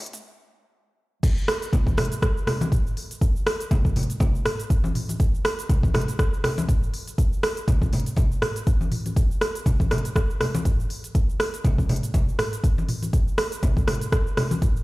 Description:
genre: house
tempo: 121 BPM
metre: 4/4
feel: swing 56% on 16ths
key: none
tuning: none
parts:
  - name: afro-pop drum kit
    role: drums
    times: 0.1-14.8 s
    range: crash cymbal, hi-hat, rim click, shaker, toms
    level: -27 LUFS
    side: right 1 dB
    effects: none
  - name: electronic kick drum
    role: drums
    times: 1.2-14.7 s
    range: none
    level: -21 LUFS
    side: equal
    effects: high-pass filter on kick
  - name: congas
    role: percussion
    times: 1.7-14.6 s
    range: none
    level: -28 LUFS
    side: left 1 dB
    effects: none
room: light reverb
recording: played on a big sound system in a bare room, large studio reverb, high-pass filter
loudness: -21 LUFS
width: side -20 dB against mid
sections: 0.0-1.2 A section; 1.2-14.8 B section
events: build-up 0.0-1.2; drum fill 0.0; filter sweep 0.0-1.2; stop 0.2-1.2; drop 1.2-14.8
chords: none

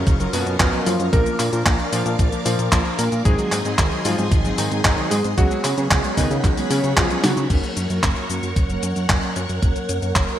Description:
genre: italo disco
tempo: 113 BPM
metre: 4/4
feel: straight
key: F# major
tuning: A4 = 438 Hz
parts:
  - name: warm electric grand piano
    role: melody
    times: 0.0-7.4 s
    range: B2 to A#4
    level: -25 LUFS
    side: left 1 dB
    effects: lush chorus, digital delay
  - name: phased string machine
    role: sustained chords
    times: 0.0-10.4 s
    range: G#4 to D6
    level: -29 LUFS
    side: right 1 dB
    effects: ensemble chorus, phaser
  - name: warbly dusty pluck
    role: arpeggios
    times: 0.0-7.5 s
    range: D#3 to E#4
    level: -30 LUFS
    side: right 3 dB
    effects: chorus, digital delay
  - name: fat analog bass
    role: bass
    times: 0.0-10.3 s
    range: F#1 to C#3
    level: -24 LUFS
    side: equal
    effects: none
  - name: clean 12-bit digital drum machine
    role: drums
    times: 0.1-10.4 s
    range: cabasa, crash cymbal, handclaps, hi-hat, snare drum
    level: -23 LUFS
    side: equal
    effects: gated reverb
  - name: electronic kick drum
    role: drums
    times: 0.1-10.3 s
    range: none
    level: -20 LUFS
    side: equal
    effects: none
  - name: analog synth brass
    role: stabs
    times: 0.2-10.4 s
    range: E#3 to A#4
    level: -28 LUFS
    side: equal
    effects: chorus, cassette tape
room: light reverb, digital ambience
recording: bright 1980s-style digital production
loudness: -17 LUFS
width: side -11 dB against mid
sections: 0.0-7.5 A section; 7.5-10.4 B section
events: drum fill 7.2; filter sweep on analog polysynth 7.5-10.4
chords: 0.0 F#maj7; 1.1 A#; 3.3 G#7; 5.4 C#7sus4; 7.5 F#

